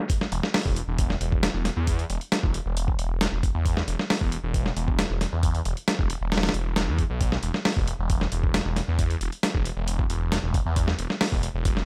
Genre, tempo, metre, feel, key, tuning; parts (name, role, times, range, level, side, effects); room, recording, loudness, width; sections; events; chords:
breakbeat, breaks; 135 BPM; 4/4; straight; A4 = 439 Hz
dusty soul sampler-style drum kit; drums; 0.1-11.9 s; hi-hat, kick drum, snare drum; -27 LUFS; equal; low-pass filter on hats, studio reverb, low-pass filter on snare, low-pass filter on kick
phased detuned saw bass; bass; 0.3-11.8 s; E1 to E2; -29 LUFS; equal; phaser
digital ambience; -26 LUFS; mono
0.1-11.9 A section
drop 0.1-11.9